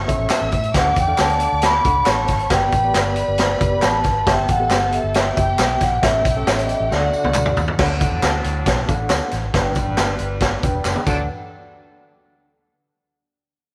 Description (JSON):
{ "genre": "uptempo 1960s-style soul", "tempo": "137 BPM", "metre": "4/4", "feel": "straight", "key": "D major", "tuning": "A4 = 436 Hz", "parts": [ { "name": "warm studio violin section", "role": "second line", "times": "0.0-7.8 s", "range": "F#4 to E6", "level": "-32 LUFS", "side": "equal", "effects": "none" }, { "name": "vintage muted fingered electric bass", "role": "bass", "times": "0.0-11.3 s", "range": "E1 to A2", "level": "-27 LUFS", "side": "equal", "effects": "none" }, { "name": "overdriven reed electric piano", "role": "accompaniment", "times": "0.1-11.3 s", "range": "D2 to G5", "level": "-29 LUFS", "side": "equal", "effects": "medium tremolo" }, { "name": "raw garage drum kit", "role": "drums", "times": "0.1-11.2 s", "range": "crash cymbal, hi-hat, kick drum, snare drum, toms", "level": "-22 LUFS", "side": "equal", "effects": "none" }, { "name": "tambourine and handclaps", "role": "percussion", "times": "0.1-11.3 s", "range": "none", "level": "-34 LUFS", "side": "equal", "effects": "none" }, { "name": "vibraphone with soft mallets", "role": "melody", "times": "0.3-7.5 s", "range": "C#5 to B5", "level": "-22 LUFS", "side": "equal", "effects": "none" }, { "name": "warm horn section", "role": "second line", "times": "7.8-11.2 s", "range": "A2 to B4", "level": "-33 LUFS", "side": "equal", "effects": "none" } ], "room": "moderate echo chamber reverb, RT60 2.0 s", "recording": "none", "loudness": "-18 LUFS", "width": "mono", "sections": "0.0-7.8 A section; 7.8-11.3 B section; 11.3-13.0 C section", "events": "drum fill 6.9-7.8, 10.9-11.3", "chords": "0.0 A; 0.7 D; 2.5 G; 4.3 Em/G; 6.0 A; 6.9 D; 9.5 G; 11.1 D; 11.3 N.C." }